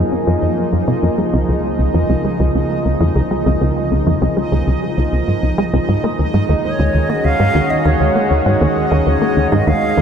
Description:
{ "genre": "ambient, sequencer-driven space music", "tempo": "99 BPM", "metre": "4/4", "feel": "straight", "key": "unclear", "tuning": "A4 = 440 Hz", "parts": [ { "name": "lush unison pad", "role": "sustained chords", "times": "0.0-10.0 s", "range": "Db2 to Ab4", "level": "-18 LUFS", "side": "equal", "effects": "chorus" }, { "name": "tight sequencer bass", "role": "riff", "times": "0.0-10.0 s", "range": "Db2 to Db4", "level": "-16 LUFS", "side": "equal", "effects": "wide subtle chorus, analog delay" }, { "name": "bubbling stepped-filter texture", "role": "texture", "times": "0.0-10.0 s", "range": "Eb5", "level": "-30 LUFS", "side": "right 3 dB", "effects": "chorus, built-in reverb" }, { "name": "bright wooden flute", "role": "melody", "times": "6.6-10.0 s", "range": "Db5 to F5", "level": "-20 LUFS", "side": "right 1 dB", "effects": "analog delay" } ], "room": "wet huge ambient reverb, RT60 8.6 s", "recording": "dark, warm production", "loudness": "-13 LUFS", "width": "side -7 dB against mid", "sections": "0.0-10.0 A section", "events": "fade-in on synth texture 0.0-10.0; filter sweep on analog synth bass 0.0-10.0", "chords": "0.0 Gbmaj7; 1.2 Dbadd9; 6.0 Ebm7" }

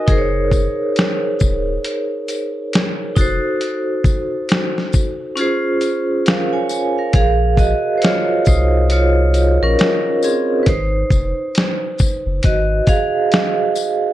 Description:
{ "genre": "lo-fi hip hop", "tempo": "68 BPM", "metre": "4/4", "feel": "swing 62% on 16ths", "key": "Bb minor", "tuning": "A4 = 441 Hz", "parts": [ { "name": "vibraphone with hard mallets", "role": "accompaniment", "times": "0.0-14.1 s", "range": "C4 to Ab5", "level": "-17 LUFS", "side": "right 1 dB", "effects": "low-pass filter" }, { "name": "warm sub bass", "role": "bass", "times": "0.1-12.8 s", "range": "Eb1 to C2", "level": "-18 LUFS", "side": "equal", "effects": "none" }, { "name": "dusty soul sampler-style drum kit", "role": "drums", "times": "0.1-14.0 s", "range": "hi-hat, kick drum, shaker, snare drum", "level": "-17 LUFS", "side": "equal", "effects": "vintage 12-bit sampler grit" }, { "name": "tambourine", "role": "percussion", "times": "0.5-14.0 s", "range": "none", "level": "-32 LUFS", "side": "left 10 dB", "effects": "none" } ], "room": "light reverb", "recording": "none", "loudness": "-14 LUFS", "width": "side -14 dB against mid", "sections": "0.0-7.1 A section; 7.1-14.1 B section", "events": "kick muted 5.4-7.1; vibraphone solo 7.1-14.1", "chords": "0.1 Gb6; 3.2 F7b9 (rootless); 5.4 Dbmaj7; 7.1 Bbm7; 10.7 Ab7" }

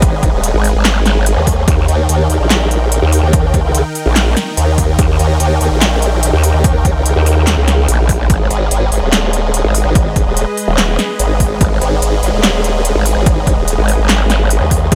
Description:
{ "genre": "heavy wobble dubstep", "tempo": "145 BPM", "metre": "4/4", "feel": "half-time", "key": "G# harmonic minor", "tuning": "A4 = 439 Hz", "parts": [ { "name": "supersaw chords", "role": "sustained chords", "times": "0.0-14.9 s", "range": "D#3 to G5", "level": "-24 LUFS", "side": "equal", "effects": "sidechain pumping" }, { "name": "formant-sweep wobble bass", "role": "bass", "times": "0.0-14.9 s", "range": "D#1 to D#2", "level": "-16 LUFS", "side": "equal", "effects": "chorus, overdrive" }, { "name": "big-room dance drum kit", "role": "drums", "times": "0.0-14.9 s", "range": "handclaps, hi-hat, snare drum", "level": "-19 LUFS", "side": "equal", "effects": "overdrive" }, { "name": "electronic kick drum", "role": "drums", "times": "0.0-14.9 s", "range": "none", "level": "-16 LUFS", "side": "equal", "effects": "overdrive" }, { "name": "growl bass", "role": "bass", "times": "0.5-14.9 s", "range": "D#1 to D#2", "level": "-14 LUFS", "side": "equal", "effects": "chorus, overdrive" } ], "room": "digital ambience", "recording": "none", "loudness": "-13 LUFS", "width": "mono", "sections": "0.0-14.9 A section", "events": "none", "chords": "0.0 G#m; 1.7 D#; 8.3 G#m" }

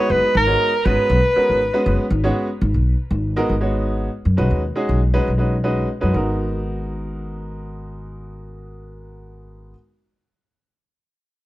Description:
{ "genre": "electric jazz fusion", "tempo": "238 BPM (eighths)", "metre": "7/8", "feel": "straight", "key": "G# minor", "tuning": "A4 = 440 Hz", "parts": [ { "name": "warm soprano saxophone", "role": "melody", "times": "0.0-2.1 s", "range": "A#4 to C#5", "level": "-18 LUFS", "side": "equal", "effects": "none" }, { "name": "clear baby grand piano", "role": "accompaniment", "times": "0.0-9.7 s", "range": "G#3 to C#5", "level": "-23 LUFS", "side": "equal", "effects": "none" }, { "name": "upright bass", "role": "bass", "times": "0.1-9.7 s", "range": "F#1 to F#2", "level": "-21 LUFS", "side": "equal", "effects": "none" } ], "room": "light reverb", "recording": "none", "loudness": "-17 LUFS", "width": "side -16 dB against mid", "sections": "0.0-2.6 A section; 2.6-6.1 B section; 6.1-9.7 C section", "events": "none", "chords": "0.0 G#m9; 0.9 G#m11; 2.6 G#m7; 4.4 B69; 6.1 G#m9" }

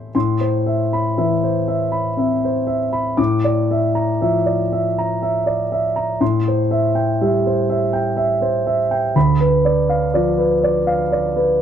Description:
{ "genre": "classical, impressionist solo piano", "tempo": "60 BPM", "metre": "3/4", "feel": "rubato", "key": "A minor", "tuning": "A4 = 440 Hz", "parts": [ { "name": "dark concert grand piano", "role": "solo", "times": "0.0-11.6 s", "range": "D2 to G6", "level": "-16 LUFS", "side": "equal", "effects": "none" } ], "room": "light reverb", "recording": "dark, warm production", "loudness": "-16 LUFS", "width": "side -9 dB against mid", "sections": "0.1-11.6 A section", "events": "none", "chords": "0.1 Amadd9; 3.2 Bbmaj7#11/A; 6.2 Am7; 9.2 Dm6" }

